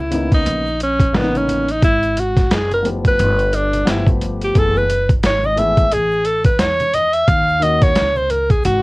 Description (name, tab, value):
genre	hip hop, jazz-hop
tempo	88 BPM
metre	4/4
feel	swing 59% on 16ths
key	unclear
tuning	A4 = 440 Hz
part	breathy alto saxophone	melody	0.0-8.8 s	B3 to E#5	-16 LUFS	equal	cassette tape
part	upright bass	bass	0.0-8.8 s	F#1 to E2	-22 LUFS	equal	none
part	dark concert grand piano	accompaniment	0.1-7.9 s	C#3 to G#4	-23 LUFS	left 2 dB	cassette tape
part	boom bap sampler-style drum kit	drums	0.1-8.8 s	hi-hat, kick drum, snare drum	-16 LUFS	equal	cassette tape
part	congas and tube shaker	percussion	0.1-8.8 s	none	-33 LUFS	right 1 dB	none
room	light reverb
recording	home recording on cassette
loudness	-14 LUFS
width	side -23 dB against mid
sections	0.0-8.8 A section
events	alto saxophone solo 0.0-8.8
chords	0.0 Bmaj9; 1.8 F#m11; 3.2 G9; 4.6 F#m11; 7.3 D#m7